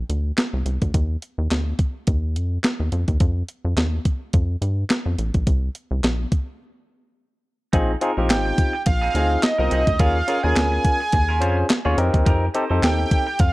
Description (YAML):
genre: early-eighties boogie funk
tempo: 106 BPM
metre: 4/4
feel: swing 56% on 16ths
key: unclear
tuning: A4 = 445 Hz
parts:
  - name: rubbery square bass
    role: bass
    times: 0.0-13.5 s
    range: Ab1 to G2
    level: -22 LUFS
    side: equal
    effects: none
  - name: clean 12-bit digital drum machine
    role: drums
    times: 0.1-13.5 s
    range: handclaps, hi-hat, kick drum, snare drum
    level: -21 LUFS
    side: equal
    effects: none
  - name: barky tine electric piano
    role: accompaniment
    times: 7.7-13.3 s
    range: C4 to Db5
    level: -24 LUFS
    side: left 2 dB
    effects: overdrive
  - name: clean electric guitar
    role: riff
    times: 7.7-13.4 s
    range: C4 to C5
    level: -32 LUFS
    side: right 4 dB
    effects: lush chorus
  - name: fat analog lead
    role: melody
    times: 8.3-13.5 s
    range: Eb5 to Ab5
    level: -23 LUFS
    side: right 2 dB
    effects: none
room: light reverb, digital ambience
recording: dark, warm production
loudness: -18 LUFS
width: side -19 dB against mid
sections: 0.0-7.7 A section; 7.7-13.5 B section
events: break 6.6-7.7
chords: 0.0 N.C.; 0.9 Ebsus2; 2.9 F7(no3); 5.5 Bbsus2; 7.7 Bb9sus4; 10.0 Eb9sus4; 12.0 F9sus4